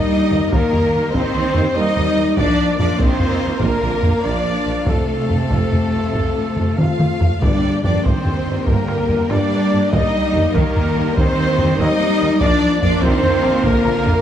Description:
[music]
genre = cinematic, epic orchestral film score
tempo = 96 BPM (dotted quarters)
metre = 12/8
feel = straight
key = unclear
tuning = A4 = 440 Hz
[part]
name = warm symphonic violin section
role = melody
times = 0.0-14.2 s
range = A4 to F5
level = -26 LUFS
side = left 2 dB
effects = none
[part]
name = clear studio violin section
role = second line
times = 0.0-14.2 s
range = A4 to F5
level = -31 LUFS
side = equal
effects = none
[part]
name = small flute group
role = second line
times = 0.0-14.0 s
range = A4 to F5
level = -29 LUFS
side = right 1 dB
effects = none
[part]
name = rich symphonic viola section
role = accompaniment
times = 0.0-14.2 s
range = A3 to F4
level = -26 LUFS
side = right 1 dB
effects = none
[part]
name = clear symphonic string section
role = sustained chords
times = 0.0-14.2 s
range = A3 to G5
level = -30 LUFS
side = equal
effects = none
[part]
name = clear trombone section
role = sustained chords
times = 0.0-14.2 s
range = F3 to C4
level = -30 LUFS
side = right 5 dB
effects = none
[part]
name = dark French horn section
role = sustained chords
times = 0.0-14.1 s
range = A3 to F4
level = -23 LUFS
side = left 5 dB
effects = none
[part]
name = dark trumpet section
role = stabs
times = 0.0-14.2 s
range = A4 to F5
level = -25 LUFS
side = equal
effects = none
[part]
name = rich symphonic cello section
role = bass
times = 0.0-14.2 s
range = C3 to A3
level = -23 LUFS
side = right 2 dB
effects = none
[part]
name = clear tuba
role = bass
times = 0.3-14.1 s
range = F1 to Eb2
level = -29 LUFS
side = right 3 dB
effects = none
[part]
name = rich symphonic double bass section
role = bass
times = 0.3-14.1 s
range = Bb1 to G2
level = -25 LUFS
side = right 2 dB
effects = none
[part]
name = taiko ensemble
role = drums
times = 0.3-14.2 s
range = none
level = -20 LUFS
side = equal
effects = none
[part]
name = timpani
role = percussion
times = 7.4-8.0 s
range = G2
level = -26 LUFS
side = equal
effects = none
[sound]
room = moderate scoring stage reverb, RT60 1.8 s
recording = dark, warm production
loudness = -14 LUFS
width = side -10 dB against mid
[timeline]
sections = 0.0-14.2 A section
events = drum fill 6.8-7.4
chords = 0.0 Eb; 2.4 Bb; 4.9 F; 7.4 Gm; 9.9 Eb; 12.4 Bb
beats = 0.52 1.14 1.76 | 2.38 3.00 3.62 4.25 | 4.88 5.51 6.15 6.79 | 7.43 8.06 8.68 9.30 | 9.93 10.55 11.17 11.79 | 12.41 13.03 13.65

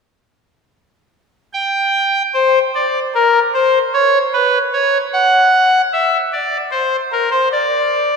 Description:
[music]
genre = classical, baroque-style 3-part fugue for pipe organ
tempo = 50 BPM (dotted quarters)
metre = 12/8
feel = straight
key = unclear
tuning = A4 = 441 Hz
[part]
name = pipe organ, trumpet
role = solo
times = 1.5-8.2 s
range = Bb4 to G5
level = -12 LUFS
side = left 1 dB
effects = none
[sound]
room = wet church reverb, RT60 3.3 s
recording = minimal, uncompressed stereo recording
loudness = -12 LUFS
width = side -5 dB against mid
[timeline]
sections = 1.5-8.2 A section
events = none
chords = none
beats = | 1.53 2.74 3.94 5.13 | 6.32 7.52

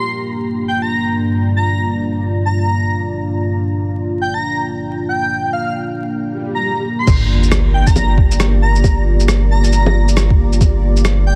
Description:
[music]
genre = future garage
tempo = 136 BPM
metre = 4/4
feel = swing 62% on 16ths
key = G minor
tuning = A4 = 440 Hz
[part]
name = airy dreamy lead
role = melody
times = 0.0-11.4 s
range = F5 to C6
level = -24 LUFS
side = equal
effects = chorus, dub echo
[part]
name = dark analog pad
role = sustained chords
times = 0.0-11.4 s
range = G2 to D5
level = -22 LUFS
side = equal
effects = chorus, sidechain pumping
[part]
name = swell and sub drop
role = sound effects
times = 6.4-8.8 s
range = none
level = -26 LUFS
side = equal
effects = none
[part]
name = soft dub sub bass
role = bass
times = 7.1-11.4 s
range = G1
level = -16 LUFS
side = equal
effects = sidechain pumping
[part]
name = electronic kick drum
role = drums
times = 7.1-10.7 s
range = none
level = -15 LUFS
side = equal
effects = none
[part]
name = lo-fi sampler-style drum kit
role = drums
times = 7.1-11.2 s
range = bongos, crash cymbal, rim click, shaker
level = -23 LUFS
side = equal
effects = low-pass filter on cymbals, low-pass filter on perc, soft clipping on snare, low-pass filter on snare, low-pass filter on room
[sound]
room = digital ambience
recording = dense, heavily limited modern master, vinyl crackle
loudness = -16 LUFS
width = mono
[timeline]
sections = 0.0-7.1 A section; 7.1-11.4 B section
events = swell 6.4-7.1; impact 7.1-8.8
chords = 0.0 Gm7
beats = | 0.02 0.46 0.90 1.34 | 1.78 2.22 2.67 3.11 | 3.55 3.99 4.43 4.87 | 5.31 5.75 6.19 6.64 | 7.08 7.52 7.96 8.40 | 8.84 9.28 9.72 10.16 | 10.61 11.05

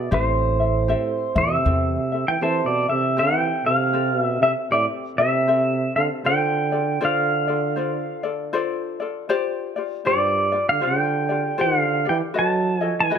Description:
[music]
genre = Hawaiian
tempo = 79 BPM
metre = 4/4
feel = swing 62% on 8ths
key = A minor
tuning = A4 = 439 Hz
[part]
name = pedal steel guitar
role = melody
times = 0.0-13.2 s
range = C5 to A5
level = -21 LUFS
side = right 1 dB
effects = none
[part]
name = breathy trombone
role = second line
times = 0.0-13.2 s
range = G2 to F#3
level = -25 LUFS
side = right 4 dB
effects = tape echo
[part]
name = ukulele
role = accompaniment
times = 0.0-13.2 s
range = C4 to E5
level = -26 LUFS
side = left 5 dB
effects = none
[part]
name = upright bass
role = bass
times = 0.1-2.0 s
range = A1 to E2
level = -22 LUFS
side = equal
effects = none
[sound]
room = light reverb, studio reverb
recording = none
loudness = -19 LUFS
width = side -8 dB against mid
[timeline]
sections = 0.0-3.2 A section; 3.2-13.2 A section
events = none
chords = 0.1 Am7; 6.2 Dm7; 9.3 G7sus4; 12.3 B7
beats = | 0.12 0.89 1.65 2.42 | 3.19 3.95 4.71 5.48 | 6.24 7.00 7.77 8.53 | 9.29 10.06 10.82 11.58 | 12.35 13.11

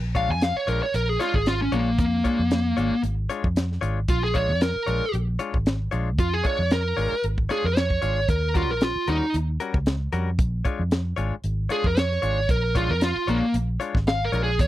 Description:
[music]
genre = straight-eighth soul blues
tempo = 114 BPM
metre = 4/4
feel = swing 54% on 16ths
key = unclear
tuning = A4 = 441 Hz
[part]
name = vintage muted fingered electric bass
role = bass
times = 0.0-14.7 s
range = Ab1 to F2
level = -25 LUFS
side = equal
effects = none
[part]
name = direct-recorded clean electric guitar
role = stabs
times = 0.1-14.5 s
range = G3 to C#5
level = -30 LUFS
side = left 6 dB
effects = none
[part]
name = smooth overdriven lead guitar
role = melody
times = 0.2-14.7 s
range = Bb3 to Ab5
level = -24 LUFS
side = equal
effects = slapback echo
[part]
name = tight funk drum kit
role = drums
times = 0.2-14.7 s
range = hi-hat, kick drum, snare drum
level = -24 LUFS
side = equal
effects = none
[sound]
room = little or no reverb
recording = dry, close 1970s-style studio recording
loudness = -21 LUFS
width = side -14 dB against mid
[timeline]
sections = 0.0-14.7 A section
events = lead electric guitar solo 0.0-14.7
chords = 0.0 Bb7#9; 8.3 Eb7#9; 10.4 Bb7#9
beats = 0.41 0.94 1.46 | 1.99 2.51 3.04 3.56 | 4.09 4.61 5.14 5.66 | 6.19 6.71 7.24 7.76 | 8.29 8.81 9.34 9.86 | 10.39 10.91 11.44 11.96 | 12.49 13.02 13.54 14.07 | 14.59

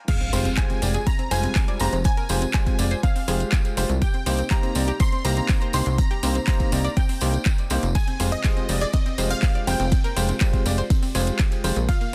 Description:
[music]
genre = progressive house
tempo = 122 BPM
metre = 4/4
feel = straight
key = F dorian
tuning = A4 = 442 Hz
[part]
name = unison pluck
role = melody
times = 0.1-12.1 s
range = D5 to C6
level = -35 LUFS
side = equal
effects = sidechain pumping, digital delay
[part]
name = soft supersaw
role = second line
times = 0.1-12.1 s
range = D5 to C6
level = -38 LUFS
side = equal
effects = sidechain pumping, delay
[part]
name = analog pluck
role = arpeggios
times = 0.1-12.1 s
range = Bb3 to D5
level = -34 LUFS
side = equal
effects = chorus, sidechain pumping, delay
[part]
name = electronic kick drum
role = drums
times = 0.1-12.0 s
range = none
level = -24 LUFS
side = equal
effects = high-pass filter on kick
[part]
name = house drum kit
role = drums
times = 0.1-12.1 s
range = crash cymbal, handclaps, hi-hat, ride cymbal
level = -34 LUFS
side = equal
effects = none
[part]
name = tambourine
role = percussion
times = 0.1-12.1 s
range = none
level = -39 LUFS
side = equal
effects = none
[part]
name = impact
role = sound effects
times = 0.1-2.0 s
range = none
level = -35 LUFS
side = equal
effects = none
[part]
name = bright grand piano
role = stabs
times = 0.3-11.8 s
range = G3 to D5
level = -32 LUFS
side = equal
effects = sidechain pumping, delay
[part]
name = plucky analog bass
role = bass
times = 0.3-11.9 s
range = F1 to C2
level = -26 LUFS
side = equal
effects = sidechain pumping
[sound]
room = little or no reverb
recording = dense, heavily limited modern master, high-pass filter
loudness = -22 LUFS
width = mono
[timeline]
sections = 0.1-12.1 A section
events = drop 0.1-12.1; impact 0.1-2.0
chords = 0.1 Fmadd9; 4.0 Cm7; 8.0 Fmadd9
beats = | 0.08 0.57 1.07 1.56 | 2.05 2.54 3.03 3.52 | 4.02 4.51 5.00 5.49 | 5.98 6.48 6.97 7.46 | 7.95 8.44 8.94 9.43 | 9.92 10.41 10.90 11.39 | 11.89

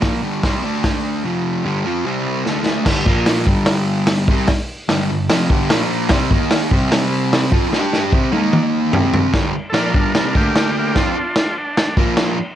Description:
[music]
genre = garage rock duo or trio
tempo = 148 BPM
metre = 4/4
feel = straight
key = unclear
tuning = A4 = 439 Hz
[part]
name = fuzz guitar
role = riff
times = 0.0-12.4 s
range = F2 to G4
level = -18 LUFS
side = equal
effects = distortion
[part]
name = vintage drum kit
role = drums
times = 0.0-12.3 s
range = crash cymbal, hi-hat, kick drum, snare drum, toms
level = -17 LUFS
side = equal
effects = none
[part]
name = overdriven combo organ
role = melody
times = 9.7-12.0 s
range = Bb3 to Bb4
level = -21 LUFS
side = right 1 dB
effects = none
[sound]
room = moderate club reverb, RT60 0.5 s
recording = none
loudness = -15 LUFS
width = side -11 dB against mid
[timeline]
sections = 0.0-2.9 A section; 2.9-9.3 B section; 9.3-12.6 C section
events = drum fill 2.5-2.9, 7.7-9.3; transistor combo organ solo 9.3-12.6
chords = 0.0 G5; 0.6 D5; 1.2 F5; 1.7 G5; 2.1 C5; 2.5 D5; 2.9 G5; 3.1 Bb5; 3.5 G5; 5.7 Bb5; 6.1 C5; 6.3 Eb5; 6.7 C5; 7.7 G5; 8.1 C5; 8.3 Eb5; 8.9 C5; 9.3 G5; 10.3 D5; 11.0 Dm7/F; 12.0 Bb5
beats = 0.03 0.44 0.84 | 1.25 1.66 2.06 2.47 | 2.87 3.28 3.68 4.09 | 4.49 4.90 5.30 5.70 | 6.11 6.51 6.91 7.32 | 7.72 8.12 8.53 8.93 | 9.34 9.74 10.15 10.55 | 10.96 11.36 11.77 12.17

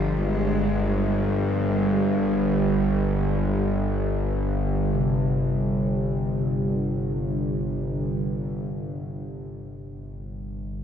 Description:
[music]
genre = ambient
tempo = free time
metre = none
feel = none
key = unclear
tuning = A4 = 442 Hz
[part]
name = rich cello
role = melody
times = 0.0-1.1 s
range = F3 to Ab3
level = -32 LUFS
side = equal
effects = analog delay
[part]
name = deep dark ambient pad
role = sustained chords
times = 0.0-8.7 s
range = G3 to G4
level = -28 LUFS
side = right 2 dB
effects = chorus, built-in reverb
[part]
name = bowed-like drone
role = drone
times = 0.0-10.8 s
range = G1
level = -25 LUFS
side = left 1 dB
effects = built-in reverb
[part]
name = quartz singing bowl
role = texture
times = 0.0-8.7 s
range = none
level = barely audible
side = none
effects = none
[part]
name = gamelan-type bronze metallophone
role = arpeggios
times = 4.9-10.7 s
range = C3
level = -28 LUFS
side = left 2 dB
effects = analog delay
[sound]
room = wet lush hall reverb, RT60 2.9 s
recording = dreamy mix soaked in reverb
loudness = -22 LUFS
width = side -8 dB against mid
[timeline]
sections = 0.0-8.7 A section; 8.7-10.8 B section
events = fade-in on bronze metallophone 0.0-8.7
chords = 0.0 G5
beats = free time

